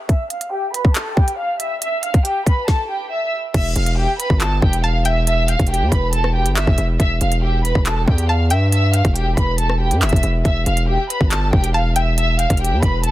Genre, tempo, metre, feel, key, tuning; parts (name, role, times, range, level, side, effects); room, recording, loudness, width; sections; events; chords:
hip hop, drill; 139 BPM; 4/4; half-time; E phrygian; A4 = 440 Hz
warm studio violin section; melody; 0.1-13.1 s; G4 to F6; -22 LUFS; equal; low-pass filter, digital delay
drill drum kit; drums; 0.1-13.1 s; crash cymbal, handclaps, hi-hat, kick drum, rim click, snare drum; -18 LUFS; equal
distorted 808-style bass; bass; 3.5-13.1 s; E1 to G2; -18 LUFS; equal; distortion
string-like resonator pluck; second line; 4.8-5.3, 8.3-8.7, 11.7-12.2 s; G5 to A5; -24 LUFS; left 2 dB; chorus, digital delay
little or no reverb; dense, heavily limited modern master; -15 LUFS; side -15 dB against mid
0.0-3.5 A section; 3.5-13.1 B section
filter sweep on violin section 0.0-3.5; stop 2.7-3.5
0.0 Em